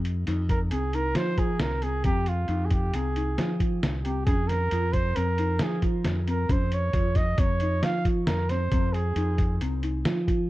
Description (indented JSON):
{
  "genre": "progressive instrumental, band music in an uneven meter",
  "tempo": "135 BPM",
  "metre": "5/4",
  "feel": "straight",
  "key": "F minor",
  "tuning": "A4 = 441 Hz",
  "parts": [
    { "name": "folk marimba with medium mallets", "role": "arpeggios", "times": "0.0-10.5 s", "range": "C4 to F4", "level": "-33 LUFS", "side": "equal", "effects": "none" },
    { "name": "modern bright fingered electric bass", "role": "bass", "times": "0.0-10.5 s", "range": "C2 to F3", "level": "-27 LUFS", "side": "equal", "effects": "none" },
    { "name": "lo-fi sampler-style drum kit", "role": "drums", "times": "0.0-10.4 s", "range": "hi-hat, kick drum, snare drum", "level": "-27 LUFS", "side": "equal", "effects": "none" },
    { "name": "mellow trumpet", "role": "melody", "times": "0.5-9.6 s", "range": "F4 to F5", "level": "-30 LUFS", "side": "right 3 dB", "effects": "tape echo" }
  ],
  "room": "light reverb",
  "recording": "worn, warbling old tape, cassette tape, warbly pitch drift",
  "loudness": "-23 LUFS",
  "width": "side -17 dB against mid",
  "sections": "0.0-10.5 A section",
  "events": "trumpet solo 0.0-10.5",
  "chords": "0.0 Fm7; 4.3 Bbmadd9/F; 8.7 Fm7"
}